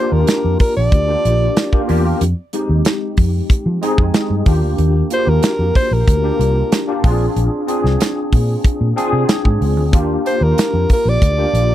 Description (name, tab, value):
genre	polished 1980s jazz-funk pop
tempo	93 BPM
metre	4/4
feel	straight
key	Eb major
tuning	A4 = 440 Hz
part	breathy alto saxophone	melody	0.0-11.7 s	Bb4 to D5	-18 LUFS	equal	none
part	tine electric piano	accompaniment	0.0-11.7 s	Ab3 to Ab4	-19 LUFS	left 1 dB	medium stereo tremolo, ensemble chorus
part	vintage muted fingered electric bass	bass	0.1-11.7 s	Bb1 to F3	-16 LUFS	equal	none
part	modern studio drum kit	drums	0.3-11.7 s	hi-hat, kick drum, snare drum	-14 LUFS	equal	none
room	little or no reverb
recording	dry, close 1970s-style studio recording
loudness	-13 LUFS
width	side -12 dB against mid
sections	0.0-11.7 A section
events	none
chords	0.0 Ebmaj9 (rootless); 2.2 Fm9; 4.5 Ebmaj9; 7.0 Bb9; 9.9 Ebmaj9